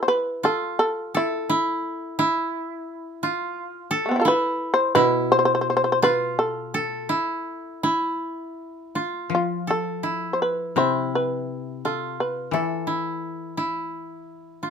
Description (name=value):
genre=japanese traditional, Japanese chamber music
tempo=85 BPM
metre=4/4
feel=rubato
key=A hirajoshi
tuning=A4 = 440 Hz
part: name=shamisen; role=melody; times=0.0-13.9 s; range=A3 to C5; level=-22 LUFS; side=equal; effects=none
part: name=koto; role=second line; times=0.0-14.7 s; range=E4 to A4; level=-26 LUFS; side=right 1 dB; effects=none
part: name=koto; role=accompaniment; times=5.0-14.6 s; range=B2 to F3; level=-28 LUFS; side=left 3 dB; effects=none
room=light reverb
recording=minimal, uncompressed stereo recording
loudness=-21 LUFS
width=side -7 dB against mid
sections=0.0-9.3 A section; 9.3-14.7 B section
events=none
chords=none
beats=0.10 | 0.80 1.50 2.20 2.89 | 3.57 4.26 4.96 5.67 | 6.38 7.09 7.83 8.57 | 9.32 10.04 10.77 11.48 | 12.17 12.87 13.57 14.27